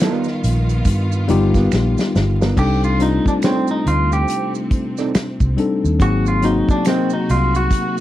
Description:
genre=R&B, neo-soul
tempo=70 BPM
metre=4/4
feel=swing 60% on 16ths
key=C dorian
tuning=A4 = 439 Hz
part: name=clean electric guitar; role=melody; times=0.0-8.0 s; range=C4 to Eb5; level=-22 LUFS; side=right 2 dB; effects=slapback echo
part: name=hollow-body jazz guitar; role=second line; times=0.0-7.1 s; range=G3 to Eb5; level=-21 LUFS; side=right 6 dB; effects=none
part: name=tine electric piano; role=accompaniment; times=0.0-8.0 s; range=Gb3 to A#4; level=-20 LUFS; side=left 4 dB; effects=none
part: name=rich studio string section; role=sustained chords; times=0.0-8.0 s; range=C3 to Gb4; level=-28 LUFS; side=right 3 dB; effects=none
part: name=unplugged drum kit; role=drums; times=0.0-8.0 s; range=crash cymbal, hi-hat, kick drum, snare drum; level=-20 LUFS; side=equal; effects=none
part: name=finger snaps and maracas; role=percussion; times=0.0-8.0 s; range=none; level=-34 LUFS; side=right 12 dB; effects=none
part: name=vintage muted fingered electric bass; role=bass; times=0.4-7.7 s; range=G1 to G2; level=-18 LUFS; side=equal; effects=none
room=little or no reverb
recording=dry, close 1970s-style studio recording, vinyl crackle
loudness=-15 LUFS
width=side -14 dB against mid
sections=0.0-2.6 A section; 2.6-8.0 B section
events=drum fill 1.7-2.6; clean electric guitar solo 2.6-8.0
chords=0.0 G7alt; 2.6 Cm69; 6.0 Ab9

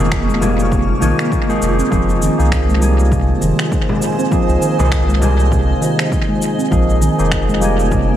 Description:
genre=organic downtempo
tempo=100 BPM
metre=4/4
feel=swing 58% on 16ths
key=F minor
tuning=A4 = 441 Hz
part: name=barky tine electric piano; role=accompaniment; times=0.0-8.2 s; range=F3 to Ab5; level=-20 LUFS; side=equal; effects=wide subtle chorus, sidechain pumping, tape echo
part: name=granular cloud pad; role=sustained chords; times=0.0-8.2 s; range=Bb3 to Db6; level=-22 LUFS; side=right 2 dB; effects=built-in reverb, sidechain pumping
part: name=warm sub bass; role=bass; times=0.0-8.1 s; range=F1 to C2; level=-16 LUFS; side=equal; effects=sidechain pumping
part: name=electronic finger snaps and shaker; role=drums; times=0.1-8.1 s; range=none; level=-26 LUFS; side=equal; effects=overdrive, small room ambience, tape echo
part: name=electronic kick drum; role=drums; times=0.1-8.1 s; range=none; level=-20 LUFS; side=equal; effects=overdrive, small room ambience
part: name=handpan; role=arpeggios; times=0.3-8.2 s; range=C3 to C4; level=-19 LUFS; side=equal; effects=dub echo
part: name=frame drum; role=percussion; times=0.4-5.4 s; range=none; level=-26 LUFS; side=left 1 dB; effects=none
room=light reverb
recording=echo-heavy mix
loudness=-13 LUFS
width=side -11 dB against mid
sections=0.0-8.2 A section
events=none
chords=0.0 Bbm7; 1.9 Fm7; 6.7 Bbm7

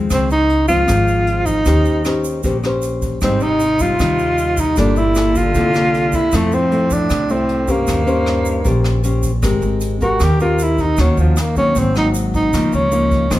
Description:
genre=bossa nova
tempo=154 BPM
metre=4/4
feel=straight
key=Ab major from 9.4 s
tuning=A4 = 440 Hz
part: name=nylon-string guitar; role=accompaniment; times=0.0-13.4 s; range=Ab2 to C5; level=-20 LUFS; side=left 2 dB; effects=none
part: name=upright bass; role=bass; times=0.0-13.4 s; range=G1 to F2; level=-19 LUFS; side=equal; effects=none
part: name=breathy tenor saxophone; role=melody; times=0.1-13.4 s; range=F3 to G4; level=-17 LUFS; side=equal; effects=none
part: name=jazz brush drum kit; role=drums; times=0.1-13.4 s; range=hi-hat, kick drum, rim click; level=-25 LUFS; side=equal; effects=none
part: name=egg shaker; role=percussion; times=0.1-13.4 s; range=none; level=-32 LUFS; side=right 6 dB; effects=none
part: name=rich cello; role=second line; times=3.2-9.1 s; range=F2 to D3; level=-25 LUFS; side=right 3 dB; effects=none
room=moderate recital hall reverb, RT60 1.4 s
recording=recorded in a church or concert hall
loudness=-14 LUFS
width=side -15 dB against mid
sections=0.0-9.4 A section; 9.4-13.4 B section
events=tenor saxophone solo 9.4-13.4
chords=0.1 Dbmaj7; 1.7 Eb6; 3.2 Abmaj7; 4.8 Gm9; 5.5 C13; 6.3 Fmaj7; 7.9 Eb6; 9.4 Abmaj9; 11.0 Ebm7; 11.8 Ab9; 12.5 Db69

